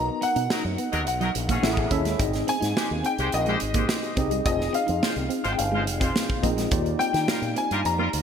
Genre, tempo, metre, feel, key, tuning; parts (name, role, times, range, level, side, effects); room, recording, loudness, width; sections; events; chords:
polished 1980s jazz-funk pop; 106 BPM; 4/4; straight; A4 = 440 Hz
clear concert grand piano; melody; 0.0-8.2 s; Eb5 to A#5; -28 LUFS; left 2 dB; analog chorus
mellow tine electric piano; accompaniment; 0.0-8.2 s; Bb3 to E5; -29 LUFS; left 2 dB; overdrive, medium stereo tremolo, lush chorus
fingered electric bass with an envelope filter; bass; 0.0-8.2 s; F1 to Eb3; -29 LUFS; equal
semi-hollow electric guitar; riff; 0.1-8.2 s; F#3 to D#4; -33 LUFS; right 6 dB; analog chorus
modern studio drum kit; drums; 0.2-8.2 s; hi-hat, kick drum, snare drum; -28 LUFS; right 1 dB; gated reverb
warm horn section; second line; 0.5-8.1 s; Fb3 to C5; -31 LUFS; left 1 dB
moderate lush hall reverb, RT60 2.0 s, studio reverb; bright 1980s-style digital production; -22 LUFS; side -7 dB against mid
0.0-8.2 A section
0.0 Bmaj7; 1.6 Amaj7; 2.2 Abmaj7; 4.5 Fm7; 6.7 Ebmaj9